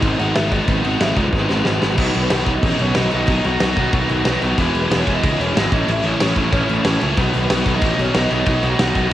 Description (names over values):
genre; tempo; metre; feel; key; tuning
punk rock; 185 BPM; 4/4; straight; B mixolydian; A4 = 444 Hz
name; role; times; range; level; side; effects
cranked stack guitar; riff; 0.0-9.1 s; G#2 to E4; -24 LUFS; right 7 dB; overdrive, cassette tape
fuzz guitar; riff; 0.0-9.1 s; E2 to B3; -27 LUFS; equal; none
tight distorted guitar; riff; 0.0-9.1 s; G#2 to E4; -23 LUFS; left 7 dB; distortion, cassette tape
fuzz picked electric bass; bass; 0.0-9.1 s; E1 to C#2; -21 LUFS; equal; overdrive
big rock drum kit; drums; 0.0-9.0 s; crash cymbal, kick drum, snare drum; -20 LUFS; equal; cassette tape
bluesy overdriven lead guitar; melody; 0.2-9.1 s; B3 to F#5; -25 LUFS; equal; distortion, cassette tape, analog delay
room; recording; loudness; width
light reverb; home recording on cassette; -15 LUFS; side -13 dB against mid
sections
0.0-2.0 A section; 2.0-9.1 B section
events
drum fill 1.3-2.0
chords
0.0 G#m; 2.0 B; 4.6 E; 5.7 A; 7.2 B